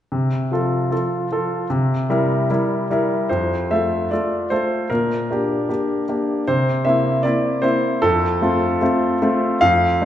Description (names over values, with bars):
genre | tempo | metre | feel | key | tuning
classical-period piano sonatina | 76 BPM | 2/4 | straight | F major | A4 = 442 Hz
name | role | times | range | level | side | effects
clear concert grand piano | solo | 0.1-10.1 s | F2 to F5 | -17 LUFS | equal | none
room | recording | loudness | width
wet recital hall reverb, RT60 1.8 s | recorded in a church or concert hall, nothing above 10.7 kHz | -17 LUFS | side -11 dB against mid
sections
0.1-3.3 A section; 3.3-10.1 B section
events
none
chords
0.1 F/C; 1.7 C7; 3.3 F; 4.9 Gm/Bb; 6.5 C7; 8.0 F